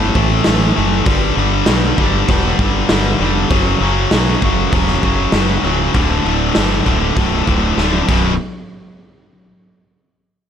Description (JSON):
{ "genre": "hard rock", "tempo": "98 BPM", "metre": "4/4", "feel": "straight", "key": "unclear", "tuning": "A4 = 439 Hz", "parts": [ { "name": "cranked stack guitar", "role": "riff", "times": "0.0-8.3 s", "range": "B1 to A3", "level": "-19 LUFS", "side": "right 12 dB", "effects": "overdrive" }, { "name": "tight distorted guitar", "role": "riff", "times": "0.0-8.3 s", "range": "B1 to A3", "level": "-18 LUFS", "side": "left 14 dB", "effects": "distortion" }, { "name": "fuzz fingered electric bass", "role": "bass", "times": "0.0-8.4 s", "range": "B0 to B1", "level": "-19 LUFS", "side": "equal", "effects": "overdrive" }, { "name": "raw garage drum kit", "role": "drums", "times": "0.2-8.2 s", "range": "crash cymbal, hi-hat, kick drum, snare drum, toms", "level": "-18 LUFS", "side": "equal", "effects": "none" } ], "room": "small room ambience", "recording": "none", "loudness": "-12 LUFS", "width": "side -8 dB against mid", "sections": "0.0-8.4 A section; 8.4-10.5 B section", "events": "drum fill 7.8-8.4", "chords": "0.0 A5; 1.1 G5; 3.5 F#5; 5.9 D5; 8.1 B5; 8.4 N.C.", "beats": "0.45 | 1.06 1.67 2.28 2.89 | 3.50 4.11 4.72 5.33 | 5.94 6.55 7.16 7.78" }